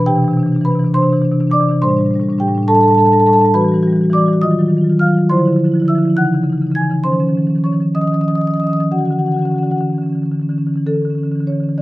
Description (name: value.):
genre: classical, contemporary piece for solo marimba.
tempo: 61-70 BPM (dotted quarters).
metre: 6/8.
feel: rubato.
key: unclear.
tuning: A4 = 442 Hz.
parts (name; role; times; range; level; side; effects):
marimba with soft mallets; solo; 0.0-11.8 s; A2 to G#6; -12 LUFS; equal; none.
room: light reverb.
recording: none.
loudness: -12 LUFS.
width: side -18 dB against mid.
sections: 0.0-10.9 A section.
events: none.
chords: 0.1 Cmaj9; 1.8 Am7; 3.5 Em9; 4.4 Ebmadd9; 5.3 Dm9; 6.2 C#madd9; 7.0 Ebsus2; 8.9 Dmaj9; 10.9 Dsus2.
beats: | 0.06 0.94 | 1.81 2.68 | 3.54 4.42 | 5.29 6.17 | 7.04 7.96 | 8.92 9.90 | 10.86 11.77.